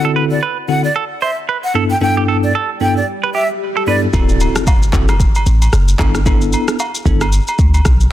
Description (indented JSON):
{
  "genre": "afrobeats",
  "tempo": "113 BPM",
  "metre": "4/4",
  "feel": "swing 58% on 16ths",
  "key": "G major",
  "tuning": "A4 = 440 Hz",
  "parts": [
    { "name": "breathy jazz flute", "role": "melody", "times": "0.0-4.0 s", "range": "D5 to G5", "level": "-20 LUFS", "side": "equal", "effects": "digital delay" },
    { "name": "bell-like tine electric piano", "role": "accompaniment", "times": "0.0-7.2 s", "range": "G2 to A4", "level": "-18 LUFS", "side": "left 1 dB", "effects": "fast stereo tremolo" },
    { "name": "clean electric guitar", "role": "riff", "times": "0.0-4.0 s", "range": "G4 to C5", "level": "-20 LUFS", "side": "right 7 dB", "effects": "digital delay" },
    { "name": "swell and impact", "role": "sound effects", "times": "2.7-6.3 s", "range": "none", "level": "-25 LUFS", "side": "left 1 dB", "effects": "none" },
    { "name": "warm 808-style bass", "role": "bass", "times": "4.1-8.1 s", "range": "D1 to D2", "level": "-13 LUFS", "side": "equal", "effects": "none" },
    { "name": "afro-pop drum kit", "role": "drums", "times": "4.1-8.1 s", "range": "handclaps, kick drum, rim click, shaker", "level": "-15 LUFS", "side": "equal", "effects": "soft clipping on snare" },
    { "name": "agogo bells and woodblock", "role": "percussion", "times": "4.1-7.8 s", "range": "none", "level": "-24 LUFS", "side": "right 1 dB", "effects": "none" }
  ],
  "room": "digital ambience",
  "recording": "dense, heavily limited modern master",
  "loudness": "-12 LUFS",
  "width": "side -13 dB against mid",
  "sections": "0.0-4.1 A section; 4.1-8.1 B section",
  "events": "swell 2.7-4.1; impact 4.1-6.3",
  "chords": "0.0 D7; 1.7 G69; 4.1 D7; 6.0 G69"
}